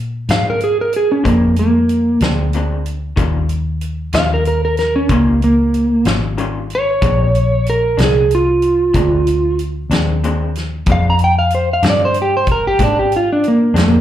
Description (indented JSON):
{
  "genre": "slow blues",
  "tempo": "62 BPM (dotted quarters)",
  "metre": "12/8",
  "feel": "straight",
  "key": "Bb mixolydian",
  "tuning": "A4 = 441 Hz",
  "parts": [
    { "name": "vintage muted fingered electric bass", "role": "bass", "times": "0.0-14.0 s", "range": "Ab1 to Bb2", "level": "-18 LUFS", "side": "left 1 dB", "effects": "none" },
    { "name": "electric slide guitar", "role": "melody", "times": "0.3-14.0 s", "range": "Bb3 to Bb5", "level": "-14 LUFS", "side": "right 1 dB", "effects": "slapback echo, plate reverb" },
    { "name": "electric guitar through a small old amp", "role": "accompaniment", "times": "0.3-13.9 s", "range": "Bb2 to F4", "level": "-24 LUFS", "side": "left 4 dB", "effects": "tremolo, plate reverb, slapback echo" },
    { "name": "natural country drum kit", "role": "drums", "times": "0.3-13.9 s", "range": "hi-hat, kick drum, snare drum", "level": "-20 LUFS", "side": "equal", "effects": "none" }
  ],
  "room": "moderate club reverb, RT60 0.7 s",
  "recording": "live gig heard through the venue's PA, club reverb",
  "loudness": "-13 LUFS",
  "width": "side -11 dB against mid",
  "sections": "0.0-14.0 A section",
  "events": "electric slide guitar solo 0.0-14.0",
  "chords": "0.0 Bb9; 3.2 Eb9; 7.0 Bb9",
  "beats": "0.29 1.25 2.21 | 3.17 4.13 5.09 6.05 | 7.02 7.98 8.94 9.90 | 10.87 11.83 12.79 13.75"
}